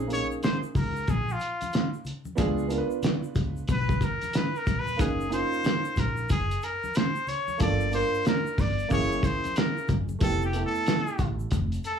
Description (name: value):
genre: hip hop, jazz-hop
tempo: 92 BPM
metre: 4/4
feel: swing 65% on 16ths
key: unclear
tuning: A4 = 440 Hz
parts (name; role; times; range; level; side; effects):
- dark grand piano; accompaniment; 0.0-11.5 s; A3 to Cb5; -31 LUFS; right 5 dB; none
- upright bass; bass; 0.0-11.8 s; Eb1 to Db2; -30 LUFS; equal; none
- trumpet with straight mute; melody; 0.1-12.0 s; F4 to D5; -30 LUFS; left 2 dB; none
- cloth-damped thuddy drum kit; drums; 0.1-12.0 s; hi-hat, kick drum, snare drum; -27 LUFS; equal; vintage 12-bit sampler grit
- egg shaker and congas; percussion; 0.1-12.0 s; none; -40 LUFS; left 5 dB; none
room: moderate studio reverb, RT60 0.5 s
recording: small room reverb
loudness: -24 LUFS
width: side -7 dB against mid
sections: 0.0-12.0 A section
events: muted trumpet solo 0.0-12.0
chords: 0.0 Bbm11; 2.4 Db7b9; 5.0 Gb69; 7.6 Gm9; 8.9 Gb9; 10.2 Fmaj9#11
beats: 0.43 1.08 1.73 | 2.38 3.04 3.69 4.34 | 4.99 5.64 6.30 6.95 | 7.60 8.25 8.91 9.56 | 10.21 10.86 11.52